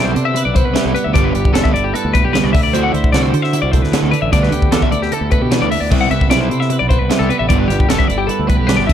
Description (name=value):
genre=math rock and midwest emo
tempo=151 BPM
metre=4/4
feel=straight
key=G major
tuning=A4 = 440 Hz
part: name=twelve-string electric guitar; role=accompaniment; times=0.0-8.9 s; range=G2 to C5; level=-21 LUFS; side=right 10 dB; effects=spring reverb
part: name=twelve-string electric guitar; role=arpeggios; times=0.0-8.9 s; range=G4 to F#5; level=-19 LUFS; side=left 9 dB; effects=spring reverb
part: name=overdriven electric guitar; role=riff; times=0.0-8.9 s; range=C3 to F#4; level=-18 LUFS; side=right 2 dB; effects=none
part: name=growling fingered electric bass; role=bass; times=0.0-8.9 s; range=E1 to D3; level=-19 LUFS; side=equal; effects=overdrive
part: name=crisp fusion drum kit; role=drums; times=0.2-8.9 s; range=crash cymbal, hi-hat, kick drum, snare drum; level=-17 LUFS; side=equal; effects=none
room=little or no reverb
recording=dark, warm production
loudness=-12 LUFS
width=side -9 dB against mid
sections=0.0-8.9 A section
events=none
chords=0.0 Cmaj7; 1.2 G69; 2.5 D9; 4.3 G69/D; 5.9 Cmaj7; 7.5 G69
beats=0.36 0.76 | 1.15 1.55 1.94 2.34 | 2.74 3.13 3.53 3.92 | 4.32 4.72 5.11 5.51 | 5.91 6.30 6.70 7.10 | 7.50 7.89 8.29 8.69